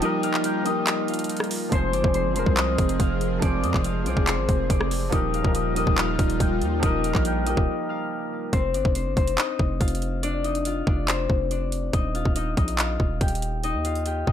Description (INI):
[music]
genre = hip hop, trap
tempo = 141 BPM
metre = 4/4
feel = half-time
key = F dorian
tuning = A4 = 441 Hz
[part]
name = concert harp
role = melody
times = 0.0-14.3 s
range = C4 to G6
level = -28 LUFS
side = left 5 dB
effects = low-pass filter, ping-pong delay
[part]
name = dark baby grand piano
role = accompaniment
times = 0.0-8.6 s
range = F3 to C5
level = -28 LUFS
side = right 1 dB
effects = low-pass filter
[part]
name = airy breathy pad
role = sustained chords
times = 0.0-8.5 s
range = F3 to Ab4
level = -30 LUFS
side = equal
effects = chorus
[part]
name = trap drum kit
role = drums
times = 0.0-14.3 s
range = handclaps, hi-hat, kick drum, rim click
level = -24 LUFS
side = equal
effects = none
[part]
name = hard-hitting 808-style bass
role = bass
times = 1.7-14.3 s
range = Eb1 to F2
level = -27 LUFS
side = equal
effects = none
[sound]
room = digital ambience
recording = none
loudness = -21 LUFS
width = side -10 dB against mid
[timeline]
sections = 0.0-8.5 A section; 8.5-14.3 B section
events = break 0.0-1.7, 7.7-8.5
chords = 0.0 Ebadd9; 1.7 Fm; 5.1 Ebadd9; 8.5 F5; 11.9 Ebadd9